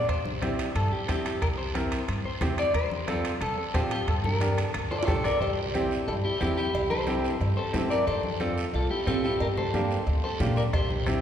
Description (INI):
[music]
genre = latin, cumbia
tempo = 180 BPM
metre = 4/4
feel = straight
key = unclear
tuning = A4 = 440 Hz
[part]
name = clean electric guitar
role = melody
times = 0.0-11.2 s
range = C4 to D5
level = -29 LUFS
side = left 1 dB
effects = spring reverb
[part]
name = upright bass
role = bass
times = 0.0-11.2 s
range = Bb1 to Bb2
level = -30 LUFS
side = equal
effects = none
[part]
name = bombo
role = percussion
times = 0.1-5.4, 10.7-11.2 s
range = none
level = -33 LUFS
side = equal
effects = none
[part]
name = guiro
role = percussion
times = 0.1-11.2 s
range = none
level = -42 LUFS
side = right 4 dB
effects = none
[part]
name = timbales and cowbell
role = percussion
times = 0.1-10.9 s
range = none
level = -39 LUFS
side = right 3 dB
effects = none
[part]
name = congas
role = percussion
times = 0.3-11.2 s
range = none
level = -37 LUFS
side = left 2 dB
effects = none
[part]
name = bright upright piano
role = accompaniment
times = 0.4-11.2 s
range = Bb3 to Bb4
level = -32 LUFS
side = right 1 dB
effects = none
[sound]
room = wet cathedral reverb, RT60 4.3 s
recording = recorded in a church or concert hall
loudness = -25 LUFS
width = side -9 dB against mid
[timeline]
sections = 0.0-5.4 A section; 5.4-11.2 A section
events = drum fill 4.9-5.4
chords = 0.1 C; 2.7 F; 4.1 Gm; 5.4 C; 8.1 F; 9.4 Gm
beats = | 0.09 0.42 0.75 1.08 | 1.42 1.75 2.08 2.42 | 2.75 3.08 3.41 3.75 | 4.08 4.41 4.75 5.08 | 5.41 5.74 6.08 6.41 | 6.74 7.07 7.41 7.74 | 8.07 8.40 8.74 9.07 | 9.40 9.73 10.07 10.40 | 10.73 11.06